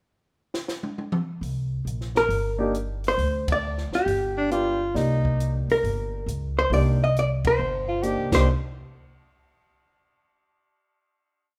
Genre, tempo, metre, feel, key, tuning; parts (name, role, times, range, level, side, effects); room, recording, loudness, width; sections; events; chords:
jazz, small-group swing and bop; 136 BPM; 4/4; swing 66% on 8ths; C minor; A4 = 437 Hz
compact cocktail drum kit; drums; 0.5-8.4 s; crash cymbal, hi-hat, kick drum, ride cymbal, snare drum, toms; -33 LUFS; equal
upright bass; bass; 1.4-8.5 s; G1 to D2; -28 LUFS; equal
hollow-body jazz guitar; melody; 2.2-8.5 s; G4 to Eb5; -27 LUFS; equal
dark baby grand piano; accompaniment; 2.6-8.5 s; Bb3 to D5; -31 LUFS; equal
clear alto saxophone; second line; 4.4-8.5 s; D4 to G4; -29 LUFS; equal
moderate large studio reverb, RT60 1.2 s; -25 LUFS; mono
0.0-1.4 pickup bar; 1.4-8.5 A section; 8.5-10.2 final hit
drum fill 0.5-1.4; band accent 3.4, 7.4
0.0 N.C.; 1.4 C7(no3); 3.2 D7(no3); 4.1 G7; 4.9 Cm9; 8.5 N.C.